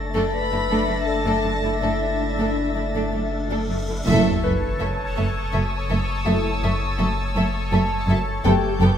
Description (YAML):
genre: cinematic, suspense film score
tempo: 82 BPM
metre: 3/4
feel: straight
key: F# phrygian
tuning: A4 = 440 Hz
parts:
  - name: bubbling stepped-filter texture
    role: sustained chords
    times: 0.0-9.0 s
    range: D4 to A5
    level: -28 LUFS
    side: left 2 dB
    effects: chorus, built-in reverb
  - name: dark French horn section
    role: sustained chords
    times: 0.0-8.7 s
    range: A3 to G4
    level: -28 LUFS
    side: left 4 dB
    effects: none
  - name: soft dub sub bass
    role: drone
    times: 0.0-9.0 s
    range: F#1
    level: -28 LUFS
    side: left 1 dB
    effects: none
  - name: bright grand piano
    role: texture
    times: 0.0-9.0 s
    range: B4 to C#6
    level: -32 LUFS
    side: equal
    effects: none
  - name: warm chamber violin section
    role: texture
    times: 0.0-9.0 s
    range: C#6 to A#6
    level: -33 LUFS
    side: left 1 dB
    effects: none
  - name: warm chamber viola section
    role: accompaniment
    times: 0.1-8.9 s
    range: A3 to B3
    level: -30 LUFS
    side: right 3 dB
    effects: none
  - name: dark chamber cello section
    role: bass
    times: 0.1-8.9 s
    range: F#2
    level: -26 LUFS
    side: right 1 dB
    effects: none
  - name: warm chamber violin section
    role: second line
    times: 0.2-8.9 s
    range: A3 to A4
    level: -32 LUFS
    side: left 2 dB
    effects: none
  - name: warm chamber violin section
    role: melody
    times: 0.3-8.9 s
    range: E5 to B5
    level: -31 LUFS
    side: left 2 dB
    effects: none
  - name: dark clarinet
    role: second line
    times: 0.3-3.3 s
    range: E4 to B4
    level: -32 LUFS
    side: left 2 dB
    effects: none
  - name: warm studio double bass section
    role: bass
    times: 0.7-8.9 s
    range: F#1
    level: -26 LUFS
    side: right 3 dB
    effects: none
  - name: cymbal swell and sub drop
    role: sound effects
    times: 3.4-6.3 s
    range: none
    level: -32 LUFS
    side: left 1 dB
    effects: none
room: moderate scoring stage reverb, RT60 2.0 s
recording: none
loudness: -20 LUFS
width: side -9 dB against mid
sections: 0.0-4.1 A section; 4.1-9.0 B section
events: cymbal swell 3.4-4.1; band accent 4.1-4.8; impact 4.1-6.3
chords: 0.0 Asus4/F#; 4.1 F#m7; 8.4 Gadd9/F#